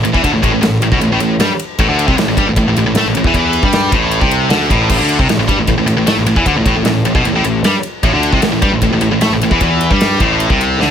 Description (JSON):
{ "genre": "heavy metal", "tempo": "153 BPM", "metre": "4/4", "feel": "straight", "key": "A minor", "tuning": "A4 = 440 Hz", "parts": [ { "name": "heavy high-gain guitar", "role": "riff", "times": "0.0-10.9 s", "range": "A2 to A3", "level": "-13 LUFS", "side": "equal", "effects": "distortion" }, { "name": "fuzz picked electric bass", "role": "bass", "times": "0.0-10.9 s", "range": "A1 to A2", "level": "-18 LUFS", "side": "equal", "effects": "overdrive" }, { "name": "big rock drum kit", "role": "drums", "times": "0.0-10.9 s", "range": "crash cymbal, kick drum, ride cymbal, snare drum", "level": "-17 LUFS", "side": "equal", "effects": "none" } ], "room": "little or no reverb", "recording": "none", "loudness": "-11 LUFS", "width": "side -8 dB against mid", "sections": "0.0-10.9 A section", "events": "none", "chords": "0.0 Am" }